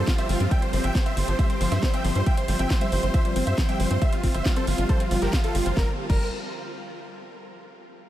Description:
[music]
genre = uplifting trance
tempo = 137 BPM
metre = 4/4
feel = straight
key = G dorian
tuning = A4 = 440 Hz
[part]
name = big supersaw lead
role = melody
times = 0.0-6.3 s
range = F4 to G5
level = -31 LUFS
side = right 1 dB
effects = sidechain pumping, analog delay
[part]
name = dark concert grand piano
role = second line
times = 0.0-6.3 s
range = F4 to G5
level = -35 LUFS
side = right 1 dB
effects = sidechain pumping, analog delay
[part]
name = tight sequencer bass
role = bass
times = 0.0-6.3 s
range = G1 to G2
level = -25 LUFS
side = equal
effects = sidechain pumping
[part]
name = wide unison pluck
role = arpeggios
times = 0.1-6.3 s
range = F3 to C5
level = -33 LUFS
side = left 3 dB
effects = analog chorus, sidechain pumping, analog delay
[part]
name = electronic kick drum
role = drums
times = 0.1-6.2 s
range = none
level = -23 LUFS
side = equal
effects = none
[part]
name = house drum kit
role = drums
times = 0.1-6.2 s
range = crash cymbal, hi-hat, snare drum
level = -34 LUFS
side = equal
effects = none
[sound]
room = light reverb, digital ambience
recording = none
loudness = -21 LUFS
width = side -13 dB against mid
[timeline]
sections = 0.0-5.8 A section; 5.8-7.5 B section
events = drop 0.0-5.8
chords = 0.0 Fsus2/G; 5.8 Gm

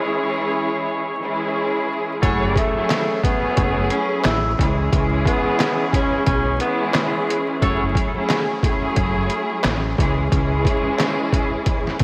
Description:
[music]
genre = hip hop, boom-bap hip-hop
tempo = 89 BPM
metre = 4/4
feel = swing 61% on 16ths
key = F# minor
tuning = A4 = 440 Hz
[part]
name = muted studio string section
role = accompaniment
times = 0.0-12.0 s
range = E3 to G#4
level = -24 LUFS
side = equal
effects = cassette tape, high-pass filter, low-pass filter
[part]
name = clear horn section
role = stabs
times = 0.0-2.7, 7.6-7.8 s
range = E4 to C#5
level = -30 LUFS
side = equal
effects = high-pass filter, low-pass filter, analog delay
[part]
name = deep dub fingered electric bass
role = bass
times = 2.2-12.0 s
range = F#1 to C#2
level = -25 LUFS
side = equal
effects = none
[part]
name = trip hop sampler-style drum kit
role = drums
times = 2.2-12.0 s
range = handclaps, hi-hat, kick drum, snare drum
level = -24 LUFS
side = equal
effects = none
[part]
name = breathy tenor saxophone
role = melody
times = 2.6-6.9 s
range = A3 to E4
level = -26 LUFS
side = equal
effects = high-pass filter, low-pass filter, analog delay
[sound]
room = wet plate reverb, RT60 3.0 s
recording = dreamy mix soaked in reverb, vinyl crackle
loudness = -20 LUFS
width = mono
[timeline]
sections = 0.0-2.2 A section; 2.2-12.0 B section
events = break 0.0-2.2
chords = 0.0 C#m; 2.2 F#m7; 4.6 C#m; 7.6 F#m7; 10.0 C#m

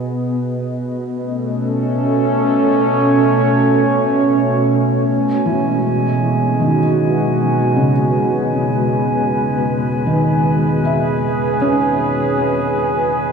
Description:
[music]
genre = ambient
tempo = 78 BPM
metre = 3/4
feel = straight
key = E major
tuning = A4 = 441 Hz
[part]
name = warbly tape-like pad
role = sustained chords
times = 0.0-13.3 s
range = B2 to D#5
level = -16 LUFS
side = right 1 dB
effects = chorus, built-in reverb
[part]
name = deep rumbling drone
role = bass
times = 8.1-13.3 s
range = E2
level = -34 LUFS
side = right 2 dB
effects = built-in reverb
[part]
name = glass harmonica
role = texture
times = 5.1-13.3 s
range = G#5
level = -23 LUFS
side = right 1 dB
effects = none
[part]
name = felt-muted upright piano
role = arpeggios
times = 5.5-13.3 s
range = C#3 to E5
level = -19 LUFS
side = equal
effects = tape echo
[sound]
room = wet huge ambient reverb, RT60 8.9 s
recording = cassette tape, small room reverb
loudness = -14 LUFS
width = side -6 dB against mid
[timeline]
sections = 0.0-5.1 A section; 5.1-13.3 B section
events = fade-in on ambient pad 0.0-5.1; fade-in on synth drone 5.1-13.3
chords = 0.5 A; 5.1 Emaj9

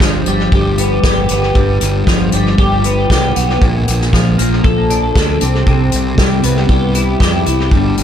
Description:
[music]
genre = indie rock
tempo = 117 BPM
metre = 4/4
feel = straight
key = C major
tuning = A4 = 440 Hz
[part]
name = twelve-string electric guitar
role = riff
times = 0.0-8.0 s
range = G2 to A4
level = -14 LUFS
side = equal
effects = double-tracked left and right, tape echo
[part]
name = fuzz fingered electric bass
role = bass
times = 0.0-8.0 s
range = G1 to F2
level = -16 LUFS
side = equal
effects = overdrive
[part]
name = unplugged drum kit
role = drums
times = 0.0-8.0 s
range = hi-hat, kick drum, snare drum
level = -15 LUFS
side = equal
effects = tape echo
[sound]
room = light reverb, small room ambience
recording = echo-heavy mix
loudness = -11 LUFS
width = side -9 dB against mid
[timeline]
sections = 0.0-8.0 A section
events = none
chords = 0.0 G7; 3.6 Bbmaj7; 5.4 Cmaj7

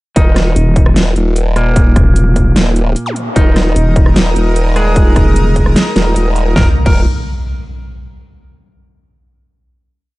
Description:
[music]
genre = heavy wobble dubstep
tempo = 150 BPM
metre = 4/4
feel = half-time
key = unclear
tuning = A4 = 444 Hz
[part]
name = clean electric guitar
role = melody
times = 0.2-7.0 s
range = Bb2 to Bb4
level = -19 LUFS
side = equal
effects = spring reverb, digital delay
[part]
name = formant-sweep wobble bass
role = bass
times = 0.2-7.0 s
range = Eb1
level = -13 LUFS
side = equal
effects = chorus, overdrive
[part]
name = dubstep drum kit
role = drums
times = 0.2-6.9 s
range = crash cymbal, hi-hat, rim click, snare drum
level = -16 LUFS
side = equal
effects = none
[part]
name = electronic kick drum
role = drums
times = 0.2-6.9 s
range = none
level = -11 LUFS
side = equal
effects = distortion
[part]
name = vowel-sweep wobble bass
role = bass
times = 0.6-5.7 s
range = Eb1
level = -11 LUFS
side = equal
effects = chorus, overdrive
[part]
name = zap and impact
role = sound effects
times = 3.1-3.2, 6.6-8.2 s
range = none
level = -19 LUFS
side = equal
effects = none
[part]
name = supersaw pad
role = sustained chords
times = 3.4-6.7 s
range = Bb3 to Eb6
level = -21 LUFS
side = right 1 dB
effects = sidechain pumping
[sound]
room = digital ambience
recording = dark, warm production, nothing above 10.9 kHz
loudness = -9 LUFS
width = side -20 dB against mid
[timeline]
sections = 0.2-6.6 drop; 6.6-8.2 final chord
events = drop 0.2-6.6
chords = 0.2 Eb5

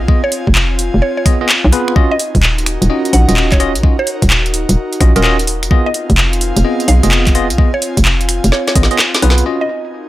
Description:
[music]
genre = UK garage, two-step garage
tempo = 128 BPM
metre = 4/4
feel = swing 66% on 16ths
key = unclear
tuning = A4 = 440 Hz
[part]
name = hollow knocking FM bass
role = bass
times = 0.0-9.4 s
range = Eb1 to Cb2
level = -13 LUFS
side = equal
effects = none
[part]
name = airy breathy pad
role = texture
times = 0.0-10.1 s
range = C4 to Ab5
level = -23 LUFS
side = left 2 dB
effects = chorus, sidechain pumping
[part]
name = bell-like tine electric piano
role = stabs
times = 0.1-9.6 s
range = Cb4 to Eb5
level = -18 LUFS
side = equal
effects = medium stereo tremolo, dub echo
[part]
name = electronic kick drum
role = drums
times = 0.1-8.9 s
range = none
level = -12 LUFS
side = equal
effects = overdrive
[part]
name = mallet-like synth pluck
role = melody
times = 0.2-9.7 s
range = Bb4 to Gb5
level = -21 LUFS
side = right 1 dB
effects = chorus, dub echo
[part]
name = garage drum kit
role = drums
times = 0.3-9.9 s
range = finger snaps, handclaps, hi-hat, snare drum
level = -15 LUFS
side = equal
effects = overdrive, low-pass filter on hats, low-pass filter on snare
[sound]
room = little or no reverb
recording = none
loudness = -10 LUFS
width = side -16 dB against mid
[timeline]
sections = 0.0-9.5 A section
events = drum fill 8.5-9.5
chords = 0.0 Fm7b5; 2.0 Ebm9; 5.5 Fm7b5; 9.5 Ebm9

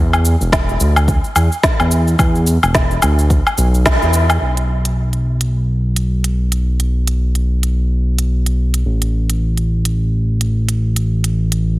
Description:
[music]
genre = organic downtempo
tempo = 108 BPM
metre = 4/4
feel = swing 59% on 16ths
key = unclear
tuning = A4 = 440 Hz
[part]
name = smooth gliding synth bass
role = bass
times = 0.0-11.8 s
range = E1 to E2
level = -14 LUFS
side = equal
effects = none
[part]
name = organic electronic drum kit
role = drums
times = 0.1-11.6 s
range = hi-hat, shaker, snare drum, woodblock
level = -17 LUFS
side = equal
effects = none
[part]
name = electronic kick drum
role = drums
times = 0.5-4.0 s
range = none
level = -17 LUFS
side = equal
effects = none
[sound]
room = light reverb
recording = heavily compressed radio sound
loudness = -13 LUFS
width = side -18 dB against mid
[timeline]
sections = 0.0-4.4 A section; 4.4-11.8 B section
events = band accent 3.9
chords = none

